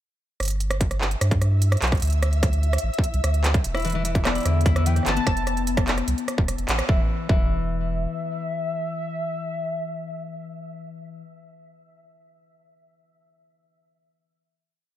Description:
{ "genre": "IDM", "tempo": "148 BPM", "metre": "4/4", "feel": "straight", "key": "unclear", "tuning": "A4 = 440 Hz", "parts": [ { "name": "warm sub bass", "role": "bass", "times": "0.4-8.1 s", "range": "D1 to G2", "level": "-23 LUFS", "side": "equal", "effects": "none" }, { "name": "industrial drum kit", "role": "drums", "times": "0.4-6.9 s", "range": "handclaps, hi-hat, rim click", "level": "-28 LUFS", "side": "right 2 dB", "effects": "none" }, { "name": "flickering grainy texture", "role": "texture", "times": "1.1-5.3 s", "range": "E5", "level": "-36 LUFS", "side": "equal", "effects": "built-in reverb, sidechain pumping" }, { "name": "electronic kick drum", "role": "drums", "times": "0.8-7.4 s", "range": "none", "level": "-22 LUFS", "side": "equal", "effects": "distortion" }, { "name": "Celtic harp", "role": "arpeggios", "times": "3.7-11.2 s", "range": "D3 to E4", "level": "-29 LUFS", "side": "left 7 dB", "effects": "ping-pong delay" }, { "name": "warm velvety synth lead", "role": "melody", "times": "4.3-10.9 s", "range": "D5 to A5", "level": "-31 LUFS", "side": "equal", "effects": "chorus, dub echo" } ], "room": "little or no reverb", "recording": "none", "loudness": "-21 LUFS", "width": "side -12 dB against mid", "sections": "0.4-6.9 groove; 6.9-10.1 final note", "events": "band accent 6.7", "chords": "0.4 N.C.; 2.0 D5; 3.6 E7(no3); 5.3 F; 6.9 N.C." }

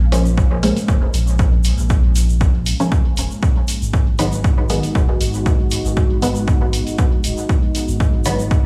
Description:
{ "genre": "dub techno", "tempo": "118 BPM", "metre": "4/4", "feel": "swing 53% on 16ths", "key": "unclear", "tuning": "A4 = 440 Hz", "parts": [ { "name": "deep dark ambient pad", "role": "sustained chords", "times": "0.0-8.7 s", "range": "Ab3 to Gb4", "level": "-29 LUFS", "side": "equal", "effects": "chorus, built-in reverb, sidechain pumping" }, { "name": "warm sub bass", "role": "bass", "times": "0.0-8.7 s", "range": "Eb1 to Bb1", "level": "-22 LUFS", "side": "equal", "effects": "sidechain pumping" }, { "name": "filtered dub chord stab", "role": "stabs", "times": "0.1-8.4 s", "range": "Eb3 to Db4", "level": "-25 LUFS", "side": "equal", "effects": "phaser, sidechain pumping, dub echo" }, { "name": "electronic hi-hat", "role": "drums", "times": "0.1-8.4 s", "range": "none", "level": "-30 LUFS", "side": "equal", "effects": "dub echo" }, { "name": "egg shaker", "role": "percussion", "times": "0.1-8.6 s", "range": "none", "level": "-34 LUFS", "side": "equal", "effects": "none" }, { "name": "electronic kick drum", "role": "drums", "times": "0.4-8.6 s", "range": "none", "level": "-19 LUFS", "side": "equal", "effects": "none" } ], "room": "light reverb, digital ambience", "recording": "studio reverb", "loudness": "-17 LUFS", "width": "mono", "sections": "0.0-8.7 A section", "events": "none", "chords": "0.0 Bbm7; 3.4 Abm7" }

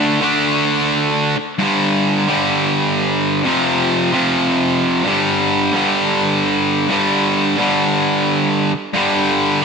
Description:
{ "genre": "rock", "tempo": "130 BPM", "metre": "4/4", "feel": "straight", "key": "unclear", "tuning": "A4 = 440 Hz", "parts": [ { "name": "distorted electric guitar", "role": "solo", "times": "0.0-9.6 s", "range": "F2 to D4", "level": "-14 LUFS", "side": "equal", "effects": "overdrive" } ], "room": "wet lush hall reverb, RT60 1.9 s", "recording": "bright 1980s-style digital production", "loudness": "-14 LUFS", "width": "side -5 dB against mid", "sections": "0.0-9.0 A section", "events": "none", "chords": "0.0 D5; 1.6 G5; 3.4 F5; 5.1 G5" }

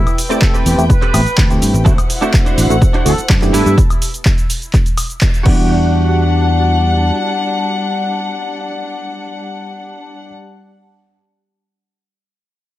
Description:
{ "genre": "filtered disco house", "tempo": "125 BPM", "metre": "4/4", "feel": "straight", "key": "E minor", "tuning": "A4 = 440 Hz", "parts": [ { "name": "mellow trumpet section", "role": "melody", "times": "0.0-3.8 s", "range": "E4 to B4", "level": "-24 LUFS", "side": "right 1 dB", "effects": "sidechain pumping, tape echo" }, { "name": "warm chamber string section", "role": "sustained chords", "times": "0.0-10.3 s", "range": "G3 to A5", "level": "-21 LUFS", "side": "left 3 dB", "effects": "vintage 12-bit sampler grit, sidechain pumping" }, { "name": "direct-recorded clean electric guitar", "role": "riff", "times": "0.0-10.3 s", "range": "C4 to D5", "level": "-23 LUFS", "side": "right 3 dB", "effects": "ensemble chorus, sidechain pumping" }, { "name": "fingered electric bass", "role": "bass", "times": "0.0-7.1 s", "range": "A1 to G2", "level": "-14 LUFS", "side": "equal", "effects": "sidechain pumping" }, { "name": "punchy analog drum machine", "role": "drums", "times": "0.1-5.6 s", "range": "crash cymbal, handclaps, hi-hat, shaker, woodblock", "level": "-21 LUFS", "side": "equal", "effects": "sidechain pumping on hats, sidechain pumping on perc, sidechain pumping on cymbals" }, { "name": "reed electric piano", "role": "accompaniment", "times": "0.3-10.3 s", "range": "G3 to F#5", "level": "-20 LUFS", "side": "right 1 dB", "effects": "overdrive, phaser, sidechain pumping" }, { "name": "electronic kick drum", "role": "drums", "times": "0.4-5.6 s", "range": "none", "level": "-13 LUFS", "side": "equal", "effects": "none" } ], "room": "light reverb", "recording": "none", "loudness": "-11 LUFS", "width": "side -15 dB against mid", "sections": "0.0-5.7 A section; 5.7-9.5 B section", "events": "drop 0.0-5.7; band accent 5.2", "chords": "0.0 Am9; 1.9 D9; 3.5 G69; 5.5 Em9" }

